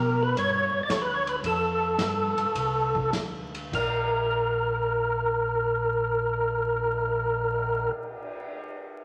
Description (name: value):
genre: soul jazz organ trio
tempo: 98-115 BPM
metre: 4/4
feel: swing 69% on 8ths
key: unclear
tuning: A4 = 440 Hz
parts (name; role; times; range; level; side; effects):
- percussive tonewheel organ; melody; 0.0-7.9 s; A4 to D5; -28 LUFS; equal; slow rotary speaker, overdrive, chorus vibrato
- mellow tonewheel organ; bass; 0.0-7.9 s; Bb1 to B2; -34 LUFS; equal; slow rotary speaker
- vintage drum kit; drums; 0.4-8.5 s; crash cymbal, cymbal swell, hi-hat, kick drum, ride cymbal, snare drum; -38 LUFS; equal; none
room: wet large studio reverb, RT60 1.3 s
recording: vinyl crackle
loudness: -26 LUFS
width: mono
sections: 0.0-3.7 A section; 3.7-8.6 B section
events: slowing down 0.0-3.7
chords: 0.0 G; 1.4 F69; 3.7 N.C.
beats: 0.38 0.91 | 1.44 1.99 2.56 3.14 | 3.74 4.34 4.95 5.56 | 6.17 6.78 7.39 8.00